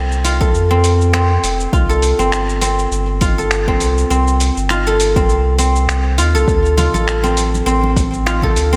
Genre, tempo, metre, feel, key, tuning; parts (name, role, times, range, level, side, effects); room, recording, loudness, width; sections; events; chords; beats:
organic downtempo; 101 BPM; 4/4; swing 56% on 16ths; A4 = 440 Hz
guzheng; arpeggios; 0.0-8.8 s; C4 to A4; -19 LUFS; equal; digital delay
warm sub bass; bass; 0.0-8.8 s; F1 to F2; -19 LUFS; equal; sidechain pumping
dusty soul sampler-style drum kit; drums; 0.1-8.8 s; cabasa, finger snaps, hi-hat; -25 LUFS; equal; studio reverb
electronic kick drum; drums; 0.4-8.5 s; -19 LUFS; equal; overdrive, studio reverb
congas; percussion; 6.8-8.5 s; -28 LUFS; equal
moderate lush hall reverb, RT60 2.8 s; big arena sound; -15 LUFS; mono
0.0-8.8 A section
0.0 F; 1.7 C5; 6.5 Dm7
0.54 1.14 | 1.73 2.32 2.92 3.51 | 4.11 4.70 5.29 5.89 | 6.48 7.08 7.67 8.26